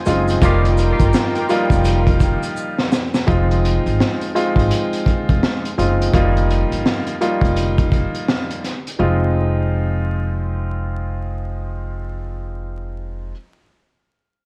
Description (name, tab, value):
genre	hip hop, boom-bap hip-hop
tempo	84 BPM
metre	4/4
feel	swing 61% on 16ths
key	F minor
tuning	A4 = 440 Hz
part	lush unison pad	sustained chords	0.0-3.2 s	F4 to Ab5	-30 LUFS	equal	chorus, phaser, high-pass filter, low-pass filter
part	clear upright piano	accompaniment	0.1-13.3 s	F3 to F4	-23 LUFS	equal	high-pass filter, low-pass filter
part	upright bass	bass	0.1-13.3 s	F1 to Ab1	-22 LUFS	equal	transformer saturation
part	crunchy breakbeat drum kit	drums	0.1-9.0 s	hi-hat, kick drum, snare drum	-22 LUFS	equal	none
part	tube shaker	percussion	0.1-3.3 s	none	-43 LUFS	equal	none
part	clear saxophone section	stabs	0.4-0.7 s	F4 to Bb4	-30 LUFS	equal	high-pass filter, low-pass filter, tape echo
room	studio ambience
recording	worn, warbling old tape, cassette tape, vinyl crackle, warbly pitch drift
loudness	-18 LUFS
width	mono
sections	0.0-3.3 A section; 3.3-9.0 B section; 9.0-11.8 C section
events	drum fill 2.6-3.3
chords	0.4 Ebadd9/F; 3.3 Fm7; 6.1 Ebadd9/F; 9.0 Fm7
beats	| 0.42 1.14 1.85 2.56 | 3.28 3.99 4.71 5.42 | 6.14 6.85 7.57 8.28 | 8.99 9.71 10.42 11.14